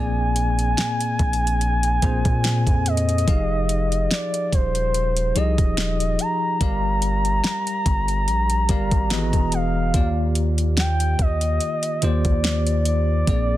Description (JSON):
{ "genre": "contemporary R&B", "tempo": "72 BPM", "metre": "4/4", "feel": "swing 54% on 16ths", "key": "unclear", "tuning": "A4 = 440 Hz", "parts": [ { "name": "gliding portamento lead", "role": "melody", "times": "0.0-13.6 s", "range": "C5 to Bb5", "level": "-25 LUFS", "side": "equal", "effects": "chorus" }, { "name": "bell-like tine electric piano", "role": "accompaniment", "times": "0.0-13.6 s", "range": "Bb2 to F5", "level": "-26 LUFS", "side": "left 1 dB", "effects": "medium stereo tremolo" }, { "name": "long sustained 808-style bass", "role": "bass", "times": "0.0-13.6 s", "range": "Eb1 to Bb2", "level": "-22 LUFS", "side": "equal", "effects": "none" }, { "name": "smooth R&B drum kit", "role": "drums", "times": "0.4-13.5 s", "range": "hi-hat, kick drum, snare drum", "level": "-23 LUFS", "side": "equal", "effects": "none" } ], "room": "little or no reverb", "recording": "dense, heavily limited modern master", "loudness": "-18 LUFS", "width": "side -14 dB against mid", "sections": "0.0-13.6 A section", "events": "none", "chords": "0.0 Bb9; 3.3 Fm7; 6.6 Gm7; 9.1 Emaj7; 9.9 Ebmaj7" }